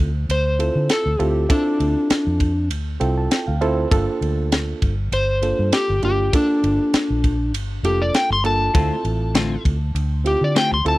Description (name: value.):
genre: straight-eighth soul blues.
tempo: 99 BPM.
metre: 4/4.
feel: swing 55% on 16ths.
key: D minor.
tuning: A4 = 439 Hz.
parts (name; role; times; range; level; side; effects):
reed electric piano; accompaniment; 0.0-11.0 s; Bb3 to A5; -24 LUFS; right 4 dB; spring reverb.
vintage muted fingered electric bass; bass; 0.0-11.0 s; F1 to D3; -22 LUFS; equal; none.
electric slide guitar; melody; 0.3-11.0 s; D4 to C6; -21 LUFS; left 1 dB; none.
tight funk drum kit; drums; 0.3-11.0 s; kick drum, ride cymbal, snare drum; -21 LUFS; equal; none.
clean electric guitar; stabs; 8.7-10.8 s; D3 to F4; -23 LUFS; left 4 dB; none.
room: little or no reverb.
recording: dry, close 1970s-style studio recording, faint mains hum.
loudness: -17 LUFS.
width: side -18 dB against mid.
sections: 0.0-11.0 A section.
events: electric slide guitar solo 0.0-11.0; reed electric piano fill 2.7-3.9.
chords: 0.0 Dm7; 3.9 Gm7; 8.7 Dm7.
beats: 0.29 0.90 | 1.50 2.10 2.71 3.31 | 3.92 4.52 5.12 5.73 | 6.33 6.94 7.54 8.14 | 8.75 9.35 9.96 10.56.